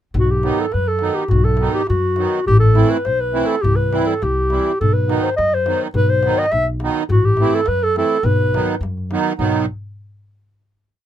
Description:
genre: balkan folk, Balkan wedding band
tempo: 104 BPM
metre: 2/4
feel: straight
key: B phrygian dominant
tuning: A4 = 438 Hz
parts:
  - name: upright bass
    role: bass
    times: 0.1-9.7 s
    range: A1 to F#2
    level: -19 LUFS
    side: left 1 dB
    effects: none
  - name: darbuka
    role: percussion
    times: 0.1-9.7 s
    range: none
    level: -22 LUFS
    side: left 2 dB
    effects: none
  - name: dark clarinet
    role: melody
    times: 0.2-8.8 s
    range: F#4 to E5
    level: -18 LUFS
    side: equal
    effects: none
  - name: accordion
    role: accompaniment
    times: 0.4-9.7 s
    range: D#3 to E4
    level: -20 LUFS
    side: right 5 dB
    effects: light tremolo tuning
room: light reverb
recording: minimal, uncompressed stereo recording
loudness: -15 LUFS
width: side -11 dB against mid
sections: 0.2-9.4 A section; 9.4-10.5 final chord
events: none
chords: 0.2 B; 2.5 Am; 3.6 C; 4.8 B; 7.1 Am; 8.2 B

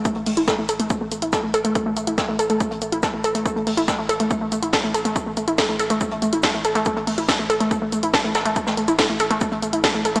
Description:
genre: driving peak-time techno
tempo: 141 BPM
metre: 4/4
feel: straight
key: unclear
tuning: A4 = 435 Hz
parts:
  - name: saturated sub bass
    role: bass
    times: 0.0-10.2 s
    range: A1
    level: -37 LUFS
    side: equal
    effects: tube saturation, sidechain pumping, low-pass filter
  - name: warbly dusty pluck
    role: riff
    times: 0.1-10.2 s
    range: A3 to A4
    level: -20 LUFS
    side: equal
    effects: chorus, tube saturation, sidechain pumping, analog delay
  - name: electronic kick drum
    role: drums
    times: 0.1-9.9 s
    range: none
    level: -26 LUFS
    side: equal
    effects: none
  - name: jazz brush drum kit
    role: drums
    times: 0.1-10.2 s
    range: hi-hat, shaker, snare drum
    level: -30 LUFS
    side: equal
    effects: high-pass filter on hats, high-pass filter on snare, high-pass filter on perc, high-pass filter on room
  - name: techno drum kit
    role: drums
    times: 0.1-10.2 s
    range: hi-hat, snare drum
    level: -24 LUFS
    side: equal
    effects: sidechain pumping on hats, sidechain pumping on toms
room: wet lush hall reverb, RT60 2.0 s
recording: dreamy mix soaked in reverb, small speaker sound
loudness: -18 LUFS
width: side -26 dB against mid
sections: 0.0-10.2 A section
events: none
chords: none

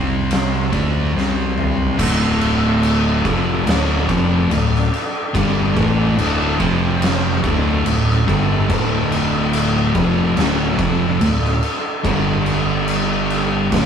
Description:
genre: stoner and doom metal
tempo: 72 BPM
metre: 4/4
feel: straight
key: D minor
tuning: A4 = 442 Hz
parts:
  - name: tonewheel organ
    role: sustained chords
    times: 0.0-13.9 s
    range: D3 to C6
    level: -29 LUFS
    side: right 1 dB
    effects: slow rotary speaker
  - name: thick fuzz guitar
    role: riff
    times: 0.0-13.9 s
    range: D2 to D4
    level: -22 LUFS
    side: left 2 dB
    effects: distortion
  - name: thick fuzz guitar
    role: riff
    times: 0.0-13.9 s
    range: D2 to D4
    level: -22 LUFS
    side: right 3 dB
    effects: distortion
  - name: overdriven fingered electric bass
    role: bass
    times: 0.0-13.9 s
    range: D1 to D2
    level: -23 LUFS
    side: equal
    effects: none
  - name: oversized low-tuned drum kit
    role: drums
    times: 0.3-13.9 s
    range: crash cymbal, kick drum, ride cymbal, snare drum, toms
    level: -20 LUFS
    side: left 1 dB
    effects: none
  - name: fuzz guitar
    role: riff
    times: 2.0-13.9 s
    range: D2 to A3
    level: -23 LUFS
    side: equal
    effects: distortion
room: light reverb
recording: rough rehearsal-room recording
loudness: -15 LUFS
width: side -7 dB against mid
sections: 0.0-2.0 A section; 2.0-13.9 B section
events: drum fill 1.1-2.0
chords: 0.0 C5; 0.7 Bb5; 1.1 C5; 2.0 Dm; 6.6 F5; 7.4 Dm; 12.0 G5

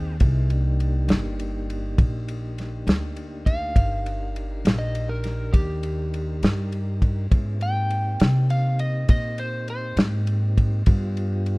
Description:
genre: slow blues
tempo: 68 BPM (dotted quarters)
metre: 12/8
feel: straight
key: C minor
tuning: A4 = 439 Hz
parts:
  - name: electric slide guitar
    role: melody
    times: 0.0-10.0 s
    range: G4 to G5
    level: -31 LUFS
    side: equal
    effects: none
  - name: mellow tonewheel organ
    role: sustained chords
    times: 0.0-11.6 s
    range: Bb3 to G5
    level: -36 LUFS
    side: equal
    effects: slow rotary speaker
  - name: upright bass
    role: bass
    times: 0.0-11.6 s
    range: G1 to C3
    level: -24 LUFS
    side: equal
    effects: none
  - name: warm soul drum kit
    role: drums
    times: 0.2-11.6 s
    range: kick drum, ride cymbal, snare drum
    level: -19 LUFS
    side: equal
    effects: none
room: small room ambience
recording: rough home demo mix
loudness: -21 LUFS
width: side -26 dB against mid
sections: 0.0-11.6 A section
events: electric slide guitar solo 0.0-11.6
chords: 0.2 Cm9; 7.3 Abmaj7; 10.9 G7

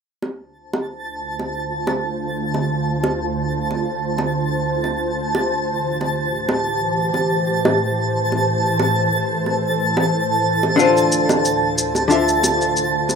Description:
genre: sunset chillout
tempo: 91 BPM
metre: 4/4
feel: swing 55% on 16ths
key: D minor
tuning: A4 = 439 Hz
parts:
  - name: ethereal airy pad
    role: sustained chords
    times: 1.0-13.2 s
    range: D2 to C5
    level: -22 LUFS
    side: equal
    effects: ensemble chorus, built-in reverb, vintage 12-bit sampler grit
  - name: bongos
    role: percussion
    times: 0.2-13.2 s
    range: none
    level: -22 LUFS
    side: right 1 dB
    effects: none
  - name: twinkling granular texture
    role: texture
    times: 0.8-13.2 s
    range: A5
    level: -22 LUFS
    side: right 2 dB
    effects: built-in reverb
  - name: vintage hollow-body jazz guitar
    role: accompaniment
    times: 10.8-13.2 s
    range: D3 to E5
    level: -18 LUFS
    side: moving between left 4 dB and right 2 dB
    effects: auto-pan, tape echo
  - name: shaker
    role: drums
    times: 10.8-13.2 s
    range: none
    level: -23 LUFS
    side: left 1 dB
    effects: none
room: wet small room reverb, RT60 0.5 s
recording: rough home demo mix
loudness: -17 LUFS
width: side -6 dB against mid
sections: 0.2-13.2 A section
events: none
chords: 0.2 Dm7; 5.5 Am7; 10.8 Dm7

